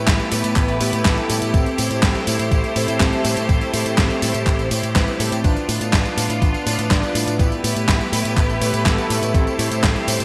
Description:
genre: italo disco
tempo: 123 BPM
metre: 4/4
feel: straight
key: A minor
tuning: A4 = 440 Hz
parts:
  - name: bright symphonic string section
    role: sustained chords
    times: 0.0-10.2 s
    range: A3 to C5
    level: -27 LUFS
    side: equal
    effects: none
  - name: chorused polysynth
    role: stabs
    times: 0.0-10.2 s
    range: B3 to D5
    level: -27 LUFS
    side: equal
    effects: digital delay
  - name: picked electric bass with an envelope filter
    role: bass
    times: 0.0-10.2 s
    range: A1 to A2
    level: -26 LUFS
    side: equal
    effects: tube saturation
  - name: clean 12-bit digital drum machine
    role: drums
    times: 0.1-10.2 s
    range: handclaps, hi-hat, snare drum, tambourine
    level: -25 LUFS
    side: equal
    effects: gated reverb
  - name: electronic kick drum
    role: drums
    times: 0.1-9.9 s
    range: none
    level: -21 LUFS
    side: equal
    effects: none
room: moderate lush hall reverb, RT60 1.8 s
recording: bright 1980s-style digital production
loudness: -19 LUFS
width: mono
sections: 0.0-10.2 A section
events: none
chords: 0.0 Em/A; 1.5 Am7; 5.4 Bdim/A; 7.4 Em/A; 9.3 Am7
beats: 0.08 0.56 1.05 | 1.54 2.03 2.52 3.00 | 3.49 3.98 4.47 4.96 | 5.44 5.93 6.42 6.91 | 7.39 7.88 8.37 8.86 | 9.35 9.83

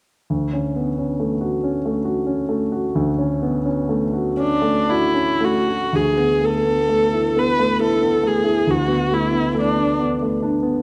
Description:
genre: classical, impressionist duo for viola and grand piano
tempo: 56-72 BPM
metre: 3/4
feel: rubato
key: D lydian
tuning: A4 = 442 Hz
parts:
  - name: clear grand piano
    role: accompaniment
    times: 0.3-10.8 s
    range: D2 to F#4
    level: -22 LUFS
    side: equal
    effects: none
  - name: warm viola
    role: melody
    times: 4.4-10.0 s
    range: D4 to B4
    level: -21 LUFS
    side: equal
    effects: none
room: wet recital hall reverb, RT60 1.7 s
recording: dark, warm production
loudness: -20 LUFS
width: mono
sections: 0.3-5.9 A section; 5.9-10.8 B section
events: none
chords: 0.3 Dmaj7; 5.9 Dsus2; 8.7 Bm7/D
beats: | 0.30 1.20 2.06 | 2.96 3.90 4.90 | 5.93 6.91 7.82 | 8.69 9.58 10.45

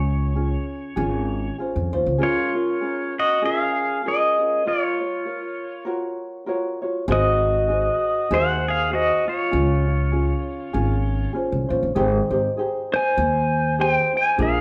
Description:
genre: Hawaiian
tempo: 98 BPM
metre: 4/4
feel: swing 58% on 8ths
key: Db major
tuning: A4 = 440 Hz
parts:
  - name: pedal steel guitar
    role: melody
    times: 0.0-14.6 s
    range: F4 to Ab5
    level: -24 LUFS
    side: equal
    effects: none
  - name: ukulele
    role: accompaniment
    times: 0.0-14.6 s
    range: Db4 to Db5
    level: -28 LUFS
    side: equal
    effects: none
  - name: upright bass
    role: bass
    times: 0.0-2.2, 7.1-14.6 s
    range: Ab1 to F2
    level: -26 LUFS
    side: equal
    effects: none
room: wet large studio reverb, RT60 1.1 s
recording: band playing live in one room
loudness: -22 LUFS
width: mono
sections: 0.0-2.2 A section; 2.2-12.0 A section; 12.0-14.6 B section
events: none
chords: 0.0 Dbmaj7; 2.2 Db6; 4.6 Gbmaj7; 7.1 Ab7; 9.5 Dbmaj7; 12.0 Abmaj7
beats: 0.36 0.98 1.59 | 2.20 2.81 3.42 4.03 | 4.64 5.25 5.86 6.47 | 7.08 7.69 8.30 8.91 | 9.52 10.13 10.74 11.35 | 11.96 12.57 13.18 13.78 | 14.39

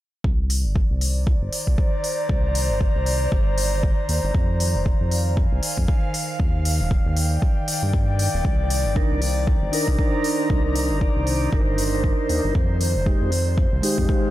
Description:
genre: deep house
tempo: 117 BPM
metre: 4/4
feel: swing 58% on 16ths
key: C minor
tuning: A4 = 440 Hz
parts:
  - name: round analog bass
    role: bass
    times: 0.2-14.1 s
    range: Eb1 to G2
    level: -23 LUFS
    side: equal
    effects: sidechain pumping
  - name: electronic kick drum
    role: drums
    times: 0.2-14.2 s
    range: none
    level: -21 LUFS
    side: equal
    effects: small room ambience
  - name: airy breathy pad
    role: texture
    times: 1.0-14.3 s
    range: Eb3 to Bb5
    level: -27 LUFS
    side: equal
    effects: chorus, sidechain pumping
  - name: electronic hi-hat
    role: drums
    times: 0.5-14.0 s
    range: none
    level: -28 LUFS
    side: left 2 dB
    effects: small room ambience
  - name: mellow tonewheel organ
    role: stabs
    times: 9.0-14.3 s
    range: Ab3 to D5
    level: -25 LUFS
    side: right 1 dB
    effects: slow rotary speaker, sidechain pumping, ping-pong delay
room: little or no reverb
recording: none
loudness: -19 LUFS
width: side -15 dB against mid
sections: 0.2-14.3 A section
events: filter sweep on analog synth bass 0.2-14.3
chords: 0.2 Cm9; 4.3 Fm7; 6.4 Ebmaj9; 8.4 Cm9; 12.6 Fm7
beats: | 0.24 0.76 1.27 1.78 | 2.29 2.81 3.32 3.83 | 4.35 4.86 5.37 5.88 | 6.40 6.91 7.42 7.94 | 8.45 8.96 9.47 9.99 | 10.50 11.01 11.53 12.04 | 12.55 13.06 13.58 14.09

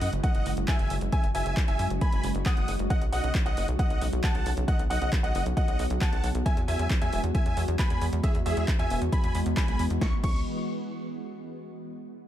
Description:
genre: uplifting trance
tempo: 135 BPM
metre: 4/4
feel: straight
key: C# minor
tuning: A4 = 440 Hz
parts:
  - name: dense compressed supersaw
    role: melody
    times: 0.0-10.4 s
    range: G#4 to D#6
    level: -34 LUFS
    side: right 1 dB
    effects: sidechain pumping, ping-pong delay
  - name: warm concert grand piano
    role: second line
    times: 0.0-10.4 s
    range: E5 to D#6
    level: -38 LUFS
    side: equal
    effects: sidechain pumping, ping-pong delay
  - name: tight sequencer bass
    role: bass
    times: 0.0-10.4 s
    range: E1 to F#2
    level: -29 LUFS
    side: equal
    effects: sidechain pumping
  - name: punchy analog drum machine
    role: drums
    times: 0.0-10.3 s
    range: crash cymbal, handclaps, hi-hat, snare drum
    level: -37 LUFS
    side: equal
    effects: overdrive
  - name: electronic kick drum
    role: drums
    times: 0.2-10.3 s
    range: none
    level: -26 LUFS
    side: equal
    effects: overdrive
room: little or no reverb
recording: none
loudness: -24 LUFS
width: side -12 dB against mid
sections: 0.0-10.0 A section; 10.0-11.8 B section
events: drop 0.0-10.0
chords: 0.0 F#sus2; 2.9 Bsus2; 6.5 Eadd9; 10.0 C#m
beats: 0.24 0.68 | 1.12 1.57 2.01 2.46 | 2.90 3.35 3.79 4.24 | 4.68 5.12 5.57 6.01 | 6.46 6.90 7.35 7.79 | 8.24 8.68 9.12 9.57 | 10.01

